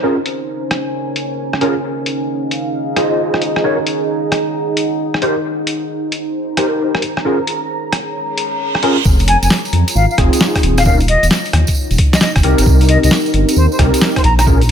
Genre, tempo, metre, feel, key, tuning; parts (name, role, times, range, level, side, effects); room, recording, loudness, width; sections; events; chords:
UK garage, two-step garage; 133 BPM; 4/4; swing 66% on 16ths; F minor; A4 = 440 Hz
overdriven tine electric piano; stabs; 0.0-14.6 s; C4 to Eb5; -18 LUFS; equal; ensemble chorus, ping-pong delay
deep dark ambient pad; texture; 0.0-14.7 s; Db4 to Bb5; -20 LUFS; right 1 dB; chorus, built-in reverb, sidechain pumping
boom bap sampler-style drum kit; drums; 0.3-14.7 s; hi-hat, rim click, snare drum; -18 LUFS; equal; low-pass filter on hats, studio reverb, low-pass filter on snare
reverse cymbal; sound effects; 8.4-9.1 s; -24 LUFS; right 7 dB
dark detuned saw bass; bass; 9.1-14.7 s; Eb1 to F2; -13 LUFS; equal
electronic kick drum; drums; 9.1-14.6 s; -14 LUFS; equal; studio reverb
tambourine; percussion; 9.1-14.7 s; -25 LUFS; right 6 dB
silver concert flute; melody; 9.3-14.4 s; C5 to Bb5; -19 LUFS; left 2 dB; ping-pong delay
light reverb; -12 LUFS; side -8 dB against mid
0.0-9.1 A section; 9.1-14.7 B section
reverse cymbal 8.4-9.1; drop 9.1-14.7
0.0 Bbm7; 1.8 Fm7; 3.6 Ebm7; 5.2 Cm7; 7.0 Bbm7; 9.1 Fm7; 10.9 Ebm7; 12.4 Cm7